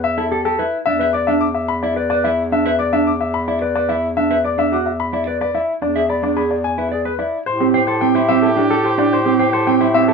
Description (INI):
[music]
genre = classical, minimalist pattern music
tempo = 109 BPM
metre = 3/4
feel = straight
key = unclear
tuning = A4 = 439 Hz
[part]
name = warm baby grand piano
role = melody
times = 0.0-10.1 s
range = G4 to D6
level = -20 LUFS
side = left 4 dB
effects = none
[part]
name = clear bass clarinet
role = bass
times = 0.0-10.1 s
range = E2 to A2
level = -24 LUFS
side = left 1 dB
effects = none
[part]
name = mellow electric guitar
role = arpeggios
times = 0.2-10.1 s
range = C4 to E5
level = -18 LUFS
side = right 3 dB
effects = none
[part]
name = warm soprano saxophone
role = second line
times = 7.5-10.1 s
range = G4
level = -22 LUFS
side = right 3 dB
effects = none
[sound]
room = light reverb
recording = none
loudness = -15 LUFS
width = side -4 dB against mid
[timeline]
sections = 0.0-7.5 A section; 7.5-10.1 B section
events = none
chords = 0.0 Em; 0.9 Bm/E; 5.8 E7; 7.5 Am7